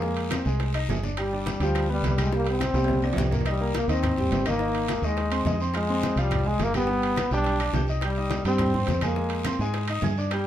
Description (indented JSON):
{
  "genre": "latin, salsa",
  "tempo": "210 BPM",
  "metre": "4/4",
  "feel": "straight",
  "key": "C minor",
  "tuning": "A4 = 440 Hz",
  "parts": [
    { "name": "clear trombone", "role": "melody", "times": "0.0-10.5 s", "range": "F3 to D4", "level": "-28 LUFS", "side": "left 1 dB", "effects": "none" },
    { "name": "warm concert grand piano", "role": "accompaniment", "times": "0.0-10.4 s", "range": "Eb3 to Ab6", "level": "-29 LUFS", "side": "equal", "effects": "none" },
    { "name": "fingered electric bass", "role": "bass", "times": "0.0-10.5 s", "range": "G1 to Ab2", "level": "-27 LUFS", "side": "equal", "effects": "none" },
    { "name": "bongos", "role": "percussion", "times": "0.0-10.5 s", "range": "none", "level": "-38 LUFS", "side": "left 4 dB", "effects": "none" },
    { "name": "congas", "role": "percussion", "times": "0.0-10.5 s", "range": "none", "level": "-34 LUFS", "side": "left 1 dB", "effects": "none" },
    { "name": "guiro", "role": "percussion", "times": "0.0-10.5 s", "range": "none", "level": "-41 LUFS", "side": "left 4 dB", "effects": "none" },
    { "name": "timbales", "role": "percussion", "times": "0.2-10.5 s", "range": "none", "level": "-35 LUFS", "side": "right 4 dB", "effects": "none" },
    { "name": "claves", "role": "percussion", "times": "0.3-10.5 s", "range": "none", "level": "-42 LUFS", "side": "left 6 dB", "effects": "none" }
  ],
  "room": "moderate studio reverb, RT60 0.7 s",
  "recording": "heard from further back in the room",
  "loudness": "-23 LUFS",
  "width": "side -11 dB against mid",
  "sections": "0.0-3.5 A section; 3.5-10.5 A section",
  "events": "drum fill 2.7-3.5",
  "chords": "0.0 Fm7; 1.2 G; 2.3 Csus2; 3.5 Cm7; 4.6 Ab; 5.7 Fm; 6.9 G; 8.0 Cm; 9.2 Fm7"
}